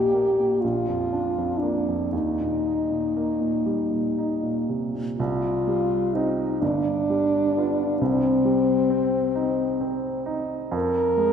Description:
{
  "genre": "classical, romantic duo for French horn and grand piano",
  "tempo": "38-45 BPM (dotted quarters)",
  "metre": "6/8",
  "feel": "rubato",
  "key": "Eb major, C minor from 5.2 s",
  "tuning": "A4 = 441 Hz",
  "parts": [
    { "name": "mellow French horn", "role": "melody", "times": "0.0-11.3 s", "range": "C4 to Bb4", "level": "-23 LUFS", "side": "left 2 dB", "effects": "none" },
    { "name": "warm baby grand piano", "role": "accompaniment", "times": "0.0-11.3 s", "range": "G1 to F4", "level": "-26 LUFS", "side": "right 3 dB", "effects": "none" }
  ],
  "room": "wet scoring stage reverb, RT60 1.9 s",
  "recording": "none",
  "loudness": "-21 LUFS",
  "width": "side -7 dB against mid",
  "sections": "0.0-5.2 A section; 5.2-11.3 B section",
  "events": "none",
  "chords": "0.0 Eb/Bb; 0.6 Bb; 2.1 Eb; 5.2 Cm; 6.6 G7; 8.0 Cm; 10.7 Fm"
}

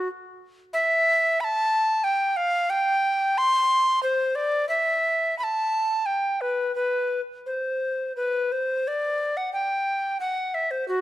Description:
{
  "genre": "classical, baroque-style fantasia for unaccompanied recorder",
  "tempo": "84-95 BPM",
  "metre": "3/4",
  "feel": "rubato",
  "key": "C major",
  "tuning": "A4 = 440 Hz",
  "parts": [
    { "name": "tenor recorder", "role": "solo", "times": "0.0-11.0 s", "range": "F#4 to C6", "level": "-22 LUFS", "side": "equal", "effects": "none" }
  ],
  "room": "light reverb",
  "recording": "close, detailed microphones",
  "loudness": "-22 LUFS",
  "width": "side -15 dB against mid",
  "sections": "0.0-8.9 A section; 8.9-11.0 A section",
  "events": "none",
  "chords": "none"
}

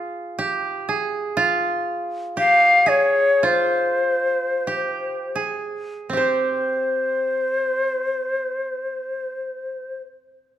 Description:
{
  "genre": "japanese traditional, Japanese chamber music",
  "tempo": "38-61 BPM",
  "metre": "2/4",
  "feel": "rubato",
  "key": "C miyako bushi",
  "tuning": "A4 = 440 Hz",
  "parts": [
    { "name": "koto", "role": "second line", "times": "0.0-10.1 s", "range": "C4 to C5", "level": "-24 LUFS", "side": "right 4 dB", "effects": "none" },
    { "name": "breathy bright shakuhachi", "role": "melody", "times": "2.4-10.0 s", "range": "C5 to F5", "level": "-19 LUFS", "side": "left 2 dB", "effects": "none" }
  ],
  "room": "moderate recital hall reverb, RT60 1.5 s",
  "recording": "dark, warm production",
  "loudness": "-19 LUFS",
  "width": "side -11 dB against mid",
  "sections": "0.0-6.1 A section; 6.1-10.6 B section",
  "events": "slowing down 1.4-6.1",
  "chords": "none"
}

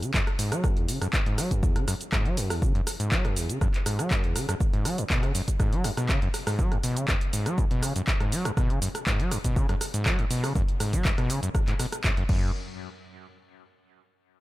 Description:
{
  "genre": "acid house",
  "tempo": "121 BPM",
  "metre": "4/4",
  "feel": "straight",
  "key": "unclear",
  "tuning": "A4 = 441 Hz",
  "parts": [
    { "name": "overdriven acid bass", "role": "riff", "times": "0.0-12.5 s", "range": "E2 to F#3", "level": "-29 LUFS", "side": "equal", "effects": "distortion, tube saturation, ping-pong delay" },
    { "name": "punchy analog drum machine", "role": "drums", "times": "0.0-12.4 s", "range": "crash cymbal, handclaps, hi-hat, rim click, shaker", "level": "-31 LUFS", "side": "equal", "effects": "none" },
    { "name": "electronic kick drum", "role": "drums", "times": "0.1-12.4 s", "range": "none", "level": "-26 LUFS", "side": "equal", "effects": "none" }
  ],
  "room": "little or no reverb",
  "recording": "none",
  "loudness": "-24 LUFS",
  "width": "side -17 dB against mid",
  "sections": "0.0-12.5 A section; 12.5-14.4 B section",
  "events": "none",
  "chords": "none"
}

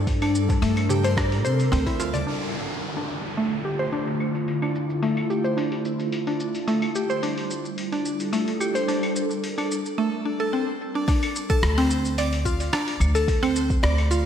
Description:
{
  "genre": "organic downtempo",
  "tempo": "109 BPM",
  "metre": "4/4",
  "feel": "swing 53% on 16ths",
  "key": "D minor",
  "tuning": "A4 = 440 Hz",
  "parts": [
    { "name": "ethereal airy pad", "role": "sustained chords", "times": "0.0-10.0 s", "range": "D3 to Bb4", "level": "-28 LUFS", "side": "equal", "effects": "ensemble chorus, built-in reverb, phaser, sidechain pumping" },
    { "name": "upright bass", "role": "bass", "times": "0.0-2.2, 11.6-14.3 s", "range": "D2 to C3", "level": "-23 LUFS", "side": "equal", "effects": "sidechain pumping" },
    { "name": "dusty soul sampler-style drum kit", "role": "drums", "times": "0.1-14.2 s", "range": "claves, hi-hat, rim click, shaker", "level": "-32 LUFS", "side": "left 1 dB", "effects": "low-pass filter on hats, low-pass filter on perc, low-pass filter on snare, low-pass filter on room" },
    { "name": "electronic kick drum", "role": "drums", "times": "0.1-2.0, 11.1-13.8 s", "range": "none", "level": "-24 LUFS", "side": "equal", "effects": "none" },
    { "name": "mallet-like synth pluck", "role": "arpeggios", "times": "0.2-14.3 s", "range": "A3 to D5", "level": "-25 LUFS", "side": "equal", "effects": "chorus, tape echo" },
    { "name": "darbuka", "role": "percussion", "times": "0.2-2.2 s", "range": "none", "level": "-34 LUFS", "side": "left 1 dB", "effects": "none" },
    { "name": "downlifter", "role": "sound effects", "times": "2.3-6.7 s", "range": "none", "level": "-35 LUFS", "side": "right 1 dB", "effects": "none" }
  ],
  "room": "wet lush hall reverb, RT60 1.7 s",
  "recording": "dreamy mix soaked in reverb",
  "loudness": "-22 LUFS",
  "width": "side -9 dB against mid",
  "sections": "0.0-2.3 A section; 2.3-11.1 B section; 11.1-14.3 C section",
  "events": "none",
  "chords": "0.0 Gmadd9; 2.3 Dm; 6.7 Gm9; 11.1 Dm7"
}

